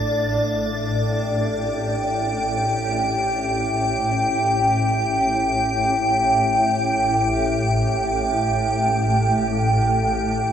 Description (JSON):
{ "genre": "dark ambient drone", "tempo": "free time", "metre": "none", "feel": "none", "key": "unclear", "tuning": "A4 = 439 Hz", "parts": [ { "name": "swarming drone", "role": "drone", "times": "0.0-10.5 s", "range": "A1 to A2", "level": "-22 LUFS", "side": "left 1 dB", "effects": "built-in reverb" }, { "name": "icy glass pad", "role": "texture", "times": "0.0-10.5 s", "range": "D5 to G5", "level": "-20 LUFS", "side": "equal", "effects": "chorus, built-in reverb" } ], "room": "wet huge ambient reverb, RT60 7.5 s", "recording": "none", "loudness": "-18 LUFS", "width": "side -8 dB against mid", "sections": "0.0-10.5 A section", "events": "fade-in on synth drone 0.0-10.5", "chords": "0.0 A7(no3)" }